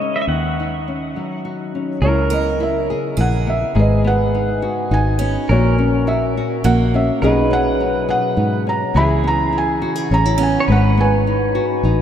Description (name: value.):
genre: acoustic folk-pop ballad.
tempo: 104 BPM.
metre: 3/4.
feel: straight.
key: unclear.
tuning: A4 = 440 Hz.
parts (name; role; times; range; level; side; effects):
pedal steel guitar; second line; 0.0-12.0 s; G#4 to F#5; -24 LUFS; right 1 dB; none.
nylon-string guitar; accompaniment; 0.0-12.0 s; G#2 to G#4; -20 LUFS; left 3 dB; none.
fingered electric bass; bass; 0.3-12.0 s; G#1 to G#2; -19 LUFS; equal; none.
felt-muted upright piano; melody; 2.0-12.0 s; E4 to B5; -20 LUFS; right 2 dB; none.
picked steel-string acoustic guitar; arpeggios; 2.3-7.3, 10.4-10.9 s; A#3 to A#4; -26 LUFS; right 5 dB; none.
room: wet cathedral reverb, RT60 5.9 s.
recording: in a vast, echoing space.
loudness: -15 LUFS.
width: side -9 dB against mid.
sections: 0.0-2.0 A section; 2.0-12.0 B section.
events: pedal steel guitar solo 0.0-2.0.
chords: 0.3 D#m7; 2.0 C#m7; 3.8 G#m7; 5.5 F#7/A#; 7.2 B69; 9.0 C#m7; 10.7 G#m7.